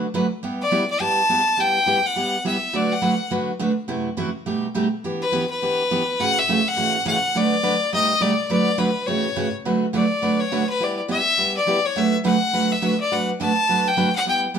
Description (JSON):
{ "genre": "country", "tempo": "208 BPM", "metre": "4/4", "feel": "swing 61% on 8ths", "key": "D major", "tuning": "A4 = 441 Hz", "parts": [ { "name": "picked steel-string acoustic guitar", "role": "accompaniment", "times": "0.0-14.6 s", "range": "F#2 to B4", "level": "-22 LUFS", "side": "right 2 dB", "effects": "none" }, { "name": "clear fiddle", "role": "melody", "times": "0.6-14.4 s", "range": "B4 to A5", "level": "-20 LUFS", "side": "left 2 dB", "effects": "none" } ], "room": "wet stone room reverb, RT60 1.0 s", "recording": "band playing live in one room", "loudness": "-18 LUFS", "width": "side -7 dB against mid", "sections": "0.0-9.6 A section; 9.6-14.6 B section", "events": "fiddle solo 9.6-14.6", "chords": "0.4 G6; 2.7 D6; 3.9 F#m7b5; 4.5 Baug7; 5.0 Em7; 6.2 A6; 7.3 D6; 7.9 B7alt; 8.5 D6; 9.1 A6; 9.6 D6; 10.8 G6; 12.0 D6" }